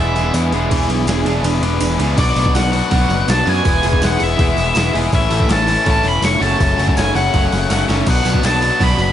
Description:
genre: indie rock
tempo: 163 BPM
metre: 4/4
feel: straight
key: unclear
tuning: A4 = 441 Hz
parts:
  - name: octave-fuzz lead guitar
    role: melody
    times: 0.0-9.1 s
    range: D5 to C#6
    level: -19 LUFS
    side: right 1 dB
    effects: distortion, slapback echo
  - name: string machine, cellos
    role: sustained chords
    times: 0.0-9.1 s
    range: F#4 to C#6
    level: -28 LUFS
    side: equal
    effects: phaser, ensemble chorus
  - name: distorted electric guitar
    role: riff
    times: 0.0-9.1 s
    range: F#2 to G#4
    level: -20 LUFS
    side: left 8 dB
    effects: overdrive
  - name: overdriven electric guitar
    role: riff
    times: 0.0-9.0 s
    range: E3 to A4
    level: -24 LUFS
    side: right 7 dB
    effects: wide subtle chorus, slapback echo
  - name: picked electric bass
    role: bass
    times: 0.0-9.1 s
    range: E1 to F#2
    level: -19 LUFS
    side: equal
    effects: none
  - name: boom bap sampler-style drum kit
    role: drums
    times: 0.2-9.1 s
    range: crash cymbal, hi-hat, kick drum, ride cymbal, snare drum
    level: -19 LUFS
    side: equal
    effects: none
  - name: tambourine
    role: percussion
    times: 0.2-9.1 s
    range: none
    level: -35 LUFS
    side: right 5 dB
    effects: none
room: light reverb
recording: nothing above 10.8 kHz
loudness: -13 LUFS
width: side -10 dB against mid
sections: 0.7-2.2 A section; 2.2-9.1 B section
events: kick and snare drop out 0.3-0.7, 1.4-2.2; drum fill 7.7-8.1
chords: 0.0 E7; 2.2 Bm; 3.7 E; 5.1 A; 6.4 F#m; 8.1 Bm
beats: 0.34 | 0.71 1.08 1.45 1.81 | 2.18 2.55 2.92 3.29 | 3.66 4.02 4.39 4.76 | 5.13 5.50 5.86 6.23 | 6.60 6.96 7.33 7.70 | 8.07 8.44 8.80

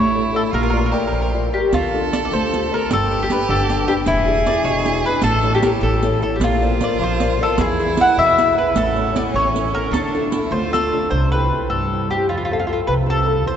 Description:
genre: italian folk, Italian serenade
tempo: 102 BPM (dotted quarters)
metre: 6/8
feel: straight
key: D minor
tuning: A4 = 442 Hz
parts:
  - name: mandolin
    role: melody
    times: 0.0-13.6 s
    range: E4 to F#5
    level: -19 LUFS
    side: left 1 dB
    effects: none
  - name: clear violin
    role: second line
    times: 0.0-11.1 s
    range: C#4 to A4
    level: -26 LUFS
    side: right 3 dB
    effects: none
  - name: nylon-string guitar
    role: accompaniment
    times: 0.0-13.6 s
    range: B2 to D5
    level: -22 LUFS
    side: left 2 dB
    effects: none
  - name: upright bass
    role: bass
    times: 0.0-13.6 s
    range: E1 to G2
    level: -23 LUFS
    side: equal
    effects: none
  - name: riq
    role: percussion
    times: 1.7-10.9 s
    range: none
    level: -27 LUFS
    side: right 3 dB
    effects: none
room: wet cathedral reverb, RT60 5.3 s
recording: recorded in a church or concert hall, nothing above 7.9 kHz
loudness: -16 LUFS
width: side -8 dB against mid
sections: 0.0-11.1 A section; 11.1-13.6 B section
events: none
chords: 0.0 A7; 0.5 Bb; 1.7 Dm; 2.9 G; 4.1 E7; 5.2 A; 6.4 Bbadd9; 7.6 E; 8.8 A; 9.9 Dm; 11.1 C; 12.3 F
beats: | 0.53 1.12 | 1.72 2.31 | 2.90 3.48 | 4.06 4.64 | 5.23 5.82 | 6.41 7.00 | 7.59 8.18 | 8.76 9.34 | 9.93 10.52 | 11.12 11.71 | 12.30 12.88 | 13.46

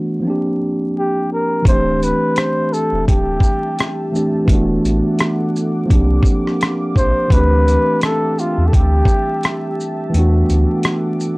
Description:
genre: lo-fi hip hop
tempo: 85 BPM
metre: 4/4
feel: swing 56% on 16ths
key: unclear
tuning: A4 = 439 Hz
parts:
  - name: mellow tine electric piano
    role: accompaniment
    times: 0.0-11.4 s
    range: E3 to G4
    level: -18 LUFS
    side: right 1 dB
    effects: cassette tape, low-pass filter
  - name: breathy flugelhorn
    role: melody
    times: 1.0-9.8 s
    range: F4 to C5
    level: -18 LUFS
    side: left 1 dB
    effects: low-pass filter
  - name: deep dark ambient pad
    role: sustained chords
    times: 2.7-11.4 s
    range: G4 to D6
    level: -30 LUFS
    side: left 1 dB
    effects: chorus, built-in reverb, low-pass filter
  - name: sub bass with octave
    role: bass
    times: 1.7-10.7 s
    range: D1 to E2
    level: -16 LUFS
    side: equal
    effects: tube saturation
  - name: dusty soul sampler-style drum kit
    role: drums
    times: 1.7-11.4 s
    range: hi-hat, kick drum, rim click, shaker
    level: -16 LUFS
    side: equal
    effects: none
room: light reverb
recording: dry, gritty hardware recording, vinyl crackle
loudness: -14 LUFS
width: side -24 dB against mid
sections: 0.0-1.7 A section; 1.7-11.4 B section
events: kick muted 10.1-11.4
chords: 0.2 C9sus4; 1.7 D9sus4; 4.5 E9sus4; 5.9 C9sus4; 7.3 D9sus4; 10.1 E9sus4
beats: 0.25 0.95 | 1.66 2.37 3.07 3.78 | 4.48 5.19 5.89 6.60 | 7.31 8.01 8.72 9.42 | 10.13 10.84

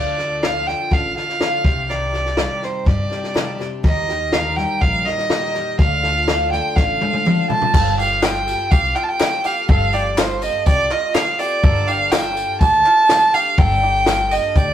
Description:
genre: indie folk with a building arrangement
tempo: 123 BPM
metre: 4/4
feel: straight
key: unclear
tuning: A4 = 440 Hz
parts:
  - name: warm fiddle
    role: melody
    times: 0.0-14.7 s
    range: C5 to A5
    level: -18 LUFS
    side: right 2 dB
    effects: none
  - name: fingerpicked steel-string acoustic guitar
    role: accompaniment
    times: 0.0-9.7 s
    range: A2 to D5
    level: -30 LUFS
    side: left 2 dB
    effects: none
  - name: picked twelve-string acoustic guitar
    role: accompaniment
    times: 0.0-14.7 s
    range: G2 to A4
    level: -28 LUFS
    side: left 2 dB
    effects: none
  - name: upright bass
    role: bass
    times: 0.0-14.7 s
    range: G1 to G2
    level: -24 LUFS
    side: equal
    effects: none
  - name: compact cocktail drum kit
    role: drums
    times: 0.2-14.7 s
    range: crash cymbal, kick drum, snare drum, toms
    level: -18 LUFS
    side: left 1 dB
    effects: none
  - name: bluegrass banjo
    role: arpeggios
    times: 7.7-14.7 s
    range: F4 to A4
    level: -30 LUFS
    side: right 3 dB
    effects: none
  - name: tambourine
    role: percussion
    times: 7.9-14.7 s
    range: none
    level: -37 LUFS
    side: left 3 dB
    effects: none
  - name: group handclap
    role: percussion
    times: 8.2-14.2 s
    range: none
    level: -31 LUFS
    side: left 2 dB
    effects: none
room: moderate studio reverb, RT60 0.6 s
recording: rough rehearsal-room recording, tube saturation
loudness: -15 LUFS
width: side -10 dB against mid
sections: 0.0-7.7 A section; 7.7-14.7 B section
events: drum fill 6.8-7.7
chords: 0.0 Dm; 1.6 Cmadd9; 3.8 Eb; 5.8 Dm; 7.7 F/G; 11.6 Gmadd9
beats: 0.42 0.91 1.40 | 1.89 2.38 2.87 3.35 | 3.84 4.33 4.82 5.31 | 5.79 6.28 6.77 7.26 | 7.74 8.23 8.72 9.20 | 9.69 10.18 10.66 11.15 | 11.63 12.12 12.61 13.09 | 13.58 14.07 14.55

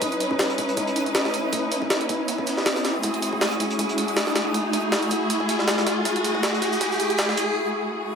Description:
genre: drum and bass, jungle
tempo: 159 BPM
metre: 4/4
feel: swing 55% on 16ths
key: unclear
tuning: A4 = 440 Hz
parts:
  - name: warm symphonic string section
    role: sustained chords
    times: 0.0-8.2 s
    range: A3 to B4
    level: -25 LUFS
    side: left 1 dB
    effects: none
  - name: crunchy breakbeat drum kit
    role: drums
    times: 0.0-7.5 s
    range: hi-hat, shaker, snare drum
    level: -36 LUFS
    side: right 2 dB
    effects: none
  - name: jungle sampler-style drum kit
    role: drums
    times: 0.0-7.5 s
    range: hi-hat, kick drum, snare drum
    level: -25 LUFS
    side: equal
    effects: high-pass filter on hats, high-pass filter on kick, high-pass filter on snare, high-pass filter on room
  - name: riser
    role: sound effects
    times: 0.0-7.6 s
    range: none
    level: -28 LUFS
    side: equal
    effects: none
  - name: backwards swelling texture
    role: texture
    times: 0.0-7.6 s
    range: D#6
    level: -35 LUFS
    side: right 4 dB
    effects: built-in reverb
room: moderate plate reverb, RT60 1.9 s, small room ambience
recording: echo-heavy mix, high-pass filter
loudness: -21 LUFS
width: side -6 dB against mid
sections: 0.0-8.2 A section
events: build-up 0.0-8.2; riser 0.0-7.6; break 7.6-8.2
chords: 0.0 C#m9; 3.0 F#m9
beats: | 0.02 0.40 0.77 1.15 | 1.53 1.90 2.28 2.66 | 3.04 3.41 3.79 4.17 | 4.55 4.92 5.30 5.68 | 6.05 6.43 6.81 7.19 | 7.56 7.94

